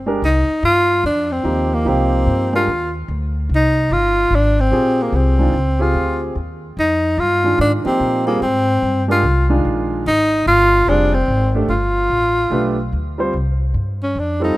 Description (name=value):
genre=modal jazz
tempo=146 BPM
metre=4/4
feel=swing 64% on 8ths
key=F dorian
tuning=A4 = 441 Hz
part: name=warm tenor saxophone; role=melody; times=0.0-14.6 s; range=Bb3 to F4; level=-16 LUFS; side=equal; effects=none
part: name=upright bass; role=bass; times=0.0-14.6 s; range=F1 to Bb2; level=-19 LUFS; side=equal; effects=none
part: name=warm concert grand piano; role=accompaniment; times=0.1-14.6 s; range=Eb3 to C5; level=-21 LUFS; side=right 2 dB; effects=none
room=small room reverb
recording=rough home demo mix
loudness=-14 LUFS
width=side -17 dB against mid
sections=0.2-13.3 A section; 13.3-14.6 B section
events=tenor saxophone solo 13.3-14.6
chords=0.2 Fm9; 11.7 G9; 13.3 Csus4